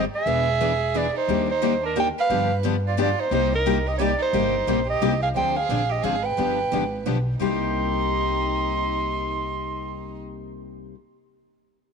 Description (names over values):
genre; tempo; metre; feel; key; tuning
acoustic string swing (jazz manouche); 177 BPM; 3/4; swing 60% on 8ths; C minor; A4 = 441 Hz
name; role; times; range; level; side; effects
warm clarinet; melody; 0.0-10.2 s; Bb4 to C6; -25 LUFS; right 2 dB; none
warm violin; second line; 0.0-10.2 s; D4 to C5; -30 LUFS; right 10 dB; none
picked steel-string acoustic guitar; accompaniment; 0.0-10.9 s; C3 to G#4; -27 LUFS; left 13 dB; none
picked steel-string acoustic guitar; accompaniment; 0.0-10.9 s; C3 to B4; -33 LUFS; right 13 dB; none
upright bass; bass; 0.0-10.9 s; E1 to G2; -29 LUFS; equal; none
room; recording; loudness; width
moderate plate reverb, RT60 3.0 s; 1960s-style stereo with parts hard left and right; -21 LUFS; side -6 dB against mid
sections
0.0-5.4 A section; 5.4-7.4 B section; 7.4-9.4 C section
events
none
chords
0.3 E7; 1.3 Ebmaj7; 2.3 G7; 3.3 Cm7; 5.4 Dm7b5; 6.4 G7b9; 7.4 Cm7